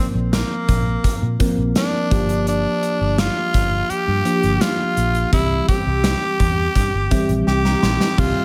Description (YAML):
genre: 1980s-style pop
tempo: 84 BPM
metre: 4/4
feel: straight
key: unclear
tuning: A4 = 440 Hz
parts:
  - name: raspy tenor saxophone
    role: melody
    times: 0.0-8.4 s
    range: Bb3 to G4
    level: -25 LUFS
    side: equal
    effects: none
  - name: mellow tine electric piano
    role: accompaniment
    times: 0.0-8.4 s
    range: Eb3 to C6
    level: -25 LUFS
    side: equal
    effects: none
  - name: vintage muted fingered electric bass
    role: bass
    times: 0.1-8.3 s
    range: G1 to Bb2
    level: -24 LUFS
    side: equal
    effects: none
  - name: gated 80s drum kit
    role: drums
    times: 0.3-8.3 s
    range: crash cymbal, hi-hat, kick drum, snare drum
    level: -23 LUFS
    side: equal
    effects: none
room: light reverb, small room ambience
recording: none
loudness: -19 LUFS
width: mono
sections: 0.0-8.2 A section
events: tine electric piano fill 6.8-8.2; drum fill 7.5-8.2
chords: 0.0 Bbsus2; 2.1 Gm7; 5.3 C